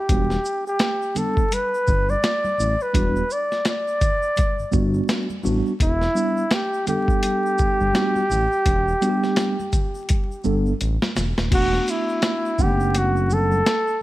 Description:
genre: hip hop, jazz-hop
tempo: 84 BPM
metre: 4/4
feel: swing 60% on 16ths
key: E minor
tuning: A4 = 440 Hz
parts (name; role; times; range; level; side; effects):
- breathy flugelhorn; melody; 0.0-14.0 s; E4 to D5; -22 LUFS; equal; none
- mellow tine electric piano; accompaniment; 0.1-13.6 s; G3 to F#5; -25 LUFS; right 1 dB; medium stereo tremolo
- smooth synth bass; bass; 0.1-13.6 s; D#1 to A1; -23 LUFS; equal; none
- boom bap sampler-style drum kit; drums; 0.1-13.9 s; crash cymbal, hi-hat, kick drum, shaker, snare drum; -22 LUFS; equal; none
- tube shaker and congas; percussion; 0.1-14.0 s; none; -34 LUFS; left 1 dB; none
room: little or no reverb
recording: vinyl crackle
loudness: -19 LUFS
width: side -16 dB against mid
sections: 0.0-11.5 A section; 11.5-14.0 B section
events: drum fill 10.1-11.5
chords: 0.1 Em9; 11.5 E9sus4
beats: | 0.09 0.81 1.52 2.23 | 2.95 3.66 4.38 5.09 | 5.80 6.52 7.23 7.95 | 8.66 9.38 10.09 10.80 | 11.52 12.23 12.95 13.66

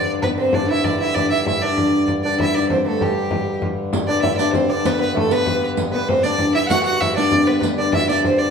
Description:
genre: medieval dance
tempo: 130 BPM (dotted quarters)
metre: 6/8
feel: straight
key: G major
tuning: A4 = 440 Hz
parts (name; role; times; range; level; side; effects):
- rich fiddle; melody; 0.0-8.5 s; G4 to F#5; -21 LUFS; right 1 dB; none
- lute; second line; 0.0-8.5 s; G3 to F#4; -23 LUFS; right 2 dB; none
- rich viola da gamba; second line; 0.0-8.5 s; G3 to F#4; -25 LUFS; left 4 dB; none
- hand-pumped harmonium; drone; 0.0-8.5 s; G2 to D3; -26 LUFS; left 1 dB; none
- frame drum; percussion; 0.1-8.4 s; none; -25 LUFS; left 2 dB; none
- riq; percussion; 3.9-8.3 s; none; -29 LUFS; right 3 dB; none
room: wet large studio reverb, RT60 1.2 s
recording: band playing live in one room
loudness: -16 LUFS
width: side -6 dB against mid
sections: 0.0-3.9 A section; 3.9-8.5 A section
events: none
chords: none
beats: | 0.23 0.69 | 1.16 1.62 | 2.08 2.55 | 3.01 3.47 | 3.93 4.39 | 4.86 5.32 | 5.78 6.24 | 6.70 7.16 | 7.62 8.08

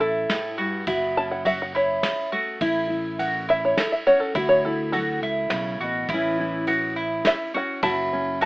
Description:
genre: acoustic folk duo or small band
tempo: 104 BPM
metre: 3/4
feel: straight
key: A major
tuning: A4 = 442 Hz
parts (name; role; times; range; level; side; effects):
- open-back banjo; melody; 0.0-8.5 s; A4 to A5; -22 LUFS; equal; none
- nylon-string guitar; accompaniment; 0.0-8.5 s; E2 to F#4; -29 LUFS; left 1 dB; none
- mandolin; arpeggios; 0.0-8.5 s; E4 to F#4; -26 LUFS; right 1 dB; none
- fingered electric bass; bass; 0.0-8.5 s; F#1 to D2; -35 LUFS; equal; none
- soft brush drum kit; drums; 0.3-8.5 s; kick drum, ride cymbal, snare drum; -32 LUFS; equal; none
room: moderate studio ambience, RT60 0.5 s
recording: AM radio sound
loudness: -21 LUFS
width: side -24 dB against mid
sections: 0.0-8.5 A section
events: five-string banjo solo 0.0-8.5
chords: 0.0 A5; 0.9 F#m; 2.6 A; 4.4 Dadd9; 6.1 A; 7.8 F#m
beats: 0.29 | 0.87 1.45 2.03 | 2.61 3.19 3.77 | 4.35 4.93 5.51 | 6.09 6.67 7.25 | 7.83 8.41

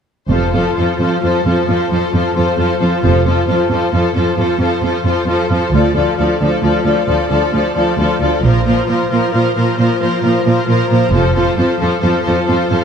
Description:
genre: cinematic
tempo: 89 BPM (dotted quarters)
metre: 12/8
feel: straight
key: F major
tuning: A4 = 439 Hz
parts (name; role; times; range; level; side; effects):
- warm symphonic violin section; second line; 0.3-12.8 s; A4 to D5; -18 LUFS; left 5 dB; none
- rich symphonic viola section; accompaniment; 0.3-12.8 s; F3 to F4; -16 LUFS; equal; none
- rich symphonic cello section; bass; 0.3-12.8 s; D2 to Bb2; -17 LUFS; right 2 dB; none
- rich symphonic double bass section; bass; 0.3-11.3 s; F1 to D2; -17 LUFS; right 3 dB; none
room: moderate scoring stage reverb, RT60 1.9 s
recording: dark, warm production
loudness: -12 LUFS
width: side -7 dB against mid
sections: 0.3-12.8 A section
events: build-up 0.3-12.8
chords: 0.3 F; 5.7 Dm; 8.4 Bbsus2; 11.1 F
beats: | 0.31 0.99 1.67 2.35 | 3.03 3.71 4.38 5.05 | 5.73 6.41 7.08 7.76 | 8.43 9.11 9.78 10.46 | 11.13 11.81 12.48

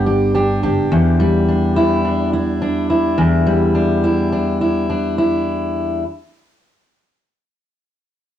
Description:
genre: pop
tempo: 106 BPM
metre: 4/4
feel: swing 60% on 16ths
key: E minor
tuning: A4 = 443 Hz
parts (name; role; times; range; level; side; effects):
- fingerpicked steel-string acoustic guitar; accompaniment; 0.0-6.0 s; E2 to G4; -14 LUFS; equal; cassette tape
- nylon-string guitar; arpeggios; 0.0-1.5 s; B3 to G4; -23 LUFS; right 4 dB; cassette tape
- upright bass; bass; 0.0-0.9 s; F#1 to G1; -24 LUFS; right 1 dB; transformer saturation
room: wet studio reverb, RT60 0.7 s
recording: home recording on cassette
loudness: -14 LUFS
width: side -11 dB against mid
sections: 0.0-5.5 A section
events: none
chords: 0.0 G; 0.9 Em7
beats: 0.35 | 0.92 1.49 2.05 2.62 | 3.19 3.76 4.33 4.89

